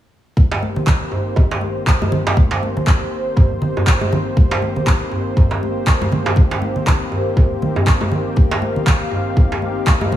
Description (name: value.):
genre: afro house.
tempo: 120 BPM.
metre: 4/4.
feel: swing 57% on 16ths.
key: C minor.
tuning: A4 = 439 Hz.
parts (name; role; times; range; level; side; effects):
warm analog pad; sustained chords; 0.4-10.2 s; Eb3 to F5; -23 LUFS; left 1 dB; chorus, sidechain pumping.
electronic kick drum; drums; 0.4-10.0 s; none; -14 LUFS; equal; small room ambience.
congas; percussion; 0.4-10.2 s; none; -24 LUFS; equal; none.
djembe; percussion; 0.5-10.1 s; none; -21 LUFS; right 2 dB; none.
electronic handclaps; drums; 0.9-10.0 s; none; -23 LUFS; equal; small room ambience.
room: light reverb, small room ambience.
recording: none.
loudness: -14 LUFS.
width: side -12 dB against mid.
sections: 0.4-10.2 A section.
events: none.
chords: 0.4 Cm7.